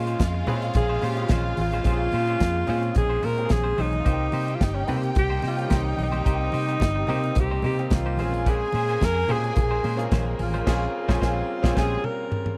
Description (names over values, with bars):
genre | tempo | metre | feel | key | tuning
disco | 109 BPM | 4/4 | straight | Bb dorian | A4 = 440 Hz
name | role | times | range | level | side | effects
warm alto saxophone | melody | 0.0-12.6 s | Db4 to Bb4 | -30 LUFS | equal | none
warm symphonic string section | second line | 0.0-12.0 s | C4 to Ab5 | -36 LUFS | equal | none
clear grand piano | accompaniment | 0.0-12.6 s | Bb3 to Ab4 | -36 LUFS | equal | none
semi-hollow electric guitar | accompaniment | 0.0-12.0 s | Ab3 to C5 | -37 LUFS | equal | none
rich studio string section | sustained chords | 0.0-12.6 s | C3 to Eb4 | -37 LUFS | equal | none
vintage muted fingered electric bass | bass | 0.0-12.0 s | G1 to C3 | -29 LUFS | equal | none
modern studio drum kit | drums | 0.1-12.6 s | crash cymbal, hi-hat, kick drum, snare drum, toms | -26 LUFS | equal | none
congas | percussion | 0.2-10.7 s | none | -36 LUFS | equal | none
room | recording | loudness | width
little or no reverb | dry, close 1970s-style studio recording | -24 LUFS | mono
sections
0.0-12.6 A section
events
band accent 10.7-12.6; drum fill 11.8-12.6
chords
0.0 Bbm9; 4.1 Cm7; 8.2 Bbm9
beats
0.20 0.75 1.30 | 1.85 2.40 2.96 3.51 | 4.06 4.61 5.16 5.71 | 6.26 6.81 7.36 7.92 | 8.47 9.02 9.57 10.12 | 10.67 11.22 11.77 12.32